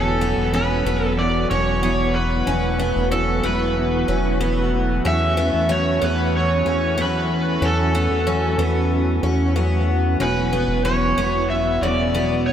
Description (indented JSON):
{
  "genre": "dream pop",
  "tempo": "93 BPM",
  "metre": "4/4",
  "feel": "straight",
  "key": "unclear",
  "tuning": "A4 = 439 Hz",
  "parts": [
    { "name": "overdriven slide guitar", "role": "melody", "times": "0.0-12.5 s", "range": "A4 to E5", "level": "-23 LUFS", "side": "right 1 dB", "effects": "diffuse ambient delay" },
    { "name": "mellow electric guitar", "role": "accompaniment", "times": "0.0-12.5 s", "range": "E3 to F#4", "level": "-27 LUFS", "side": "right 2 dB", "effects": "tremolo, analog chorus" },
    { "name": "warm analog pad", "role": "sustained chords", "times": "0.0-12.5 s", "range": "E3 to F#4", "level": "-25 LUFS", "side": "left 1 dB", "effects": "lush chorus" },
    { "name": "picked twelve-string acoustic guitar", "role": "arpeggios", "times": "0.0-12.5 s", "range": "C#3 to C#4", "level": "-26 LUFS", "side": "left 1 dB", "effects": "wide subtle chorus, diffuse ambient delay" },
    { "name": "chorused synth bass", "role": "bass", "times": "0.0-12.5 s", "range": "E1 to E2", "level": "-22 LUFS", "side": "equal", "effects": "none" }
  ],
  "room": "wet cathedral reverb, RT60 5.5 s",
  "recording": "dreamy mix soaked in reverb",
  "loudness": "-17 LUFS",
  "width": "side -9 dB against mid",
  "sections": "0.0-12.5 A section",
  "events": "none",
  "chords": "0.0 A6/E; 10.2 Esus2",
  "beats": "0.53 1.18 1.82 | 2.47 3.11 3.76 4.40 | 5.05 5.70 6.34 6.99 | 7.63 8.28 8.92 9.57 | 10.21 10.86 11.50 12.15"
}